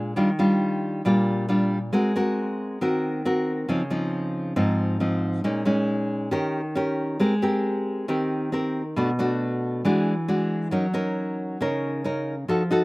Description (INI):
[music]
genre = bossa nova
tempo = 136 BPM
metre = 4/4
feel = straight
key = unclear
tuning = A4 = 440 Hz
[part]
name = nylon-string guitar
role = solo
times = 0.0-12.8 s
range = Ab2 to Bb4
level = -22 LUFS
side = equal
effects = none
[sound]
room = little or no reverb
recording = recorded outdoors, with no room sound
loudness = -22 LUFS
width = side -23 dB against mid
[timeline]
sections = 0.0-12.8 A section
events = none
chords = 0.2 Ebmaj9; 1.9 Ab9; 3.7 Dbmaj9; 5.4 Bbm7; 6.3 Eb7; 7.2 Abmaj9; 9.0 Bm7; 9.8 E9; 10.7 Gb6